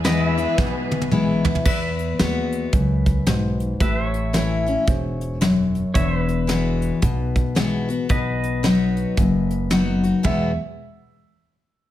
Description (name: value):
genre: honky-tonk and classic country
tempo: 112 BPM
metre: 4/4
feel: swing 62% on 8ths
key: E major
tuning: A4 = 440 Hz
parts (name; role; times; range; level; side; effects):
- clear upright piano; second line; 0.0-1.1, 10.3-10.6 s; E5; -32 LUFS; right 5 dB; none
- picked steel-string acoustic guitar; accompaniment; 0.0-10.5 s; E2 to F#4; -22 LUFS; left 3 dB; none
- pedal steel guitar; sustained chords; 0.0-10.2 s; B4 to E5; -29 LUFS; left 1 dB; none
- warm symphonic string section; sustained chords; 0.0-1.6 s; E3 to B4; -31 LUFS; right 1 dB; none
- upright bass; bass; 0.0-10.6 s; E1 to E2; -25 LUFS; right 1 dB; none
- soft brush drum kit; drums; 0.0-10.4 s; crash cymbal, hi-hat, kick drum, snare drum, toms; -23 LUFS; right 1 dB; none
room: moderate large studio reverb, RT60 1.0 s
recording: none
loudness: -18 LUFS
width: side -13 dB against mid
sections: 0.0-1.7 A section; 1.7-10.2 B section; 10.2-11.9 C section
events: drum fill 0.6-1.7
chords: 0.0 E; 1.7 Eadd9; 3.8 A; 5.9 Eadd9; 8.1 B; 10.2 Eadd9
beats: 0.04 0.58 1.12 | 1.65 2.19 2.73 3.26 | 3.80 4.34 4.88 5.41 | 5.95 6.49 7.02 7.56 | 8.10 8.63 9.17 9.71 | 10.24